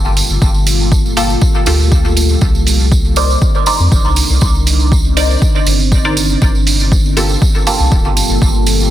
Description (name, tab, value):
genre	dub techno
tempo	120 BPM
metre	4/4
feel	straight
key	G minor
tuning	A4 = 441 Hz
part	deep dark ambient pad	sustained chords	0.1-8.9 s	Bb3 to C5	-20 LUFS	equal	chorus, built-in reverb, sidechain pumping
part	round analog bass	bass	0.0-8.9 s	D1 to F2	-14 LUFS	equal	sidechain pumping
part	tambourine	percussion	0.0-8.9 s	none	-21 LUFS	right 4 dB	none
part	electronic hi-hat	drums	0.2-8.8 s	none	-21 LUFS	right 5 dB	overdrive
part	electronic kick drum	drums	0.4-8.5 s	none	-14 LUFS	equal	overdrive
part	filtered dub chord stab	stabs	1.2-8.0 s	Bb3 to D5	-19 LUFS	equal	phaser, cassette tape, sidechain pumping, dub echo
room	little or no reverb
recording	dense, heavily limited modern master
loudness	-10 LUFS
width	side -12 dB against mid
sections	0.0-8.9 A section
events	none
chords	0.0 Gm9; 2.4 Cm9; 6.4 Gm9